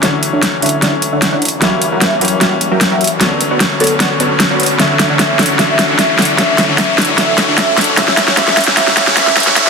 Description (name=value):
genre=future bass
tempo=151 BPM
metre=4/4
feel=half-time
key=D major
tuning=A4 = 442 Hz
part: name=bright grand piano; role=accompaniment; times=0.0-9.7 s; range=D3 to C#4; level=-19 LUFS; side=left 5 dB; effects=tape echo
part: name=airy breathy pad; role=sustained chords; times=0.0-9.7 s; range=D3 to A4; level=-26 LUFS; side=equal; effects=none
part: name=supersaw stab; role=riff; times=0.0-9.7 s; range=C#3 to B5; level=-18 LUFS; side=right 1 dB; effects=low-pass filter, tape echo
part: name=big-room dance drum kit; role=drums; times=0.0-9.7 s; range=hi-hat, snare drum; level=-13 LUFS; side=equal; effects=overdrive
part: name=riser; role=sound effects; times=1.0-9.7 s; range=none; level=-18 LUFS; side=left 1 dB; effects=none
part: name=warm velvety synth lead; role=melody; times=0.6-9.7 s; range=A4 to E5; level=-19 LUFS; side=right 1 dB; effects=chorus, digital delay
room=moderate huge ambient reverb, RT60 6.0 s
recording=dense, heavily limited modern master, high-pass filter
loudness=-10 LUFS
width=side -5 dB against mid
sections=0.0-9.7 A section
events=build-up 0.0-9.7; drum fill 0.0-9.7; filter sweep on supersaw synth 0.0-9.7; filter sweep on soft synth lead 0.0-9.7; riser 1.0-9.7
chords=0.0 Dmaj9; 1.6 F#7b9; 3.2 Bm9; 4.8 Dmaj9; 8.0 F#7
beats=| 0.03 0.42 0.82 1.22 | 1.62 2.02 2.41 2.81 | 3.21 3.60 4.00 4.40 | 4.80 5.19 5.59 5.99 | 6.39 6.78 7.18 7.58 | 7.97 8.37 8.77 9.17 | 9.56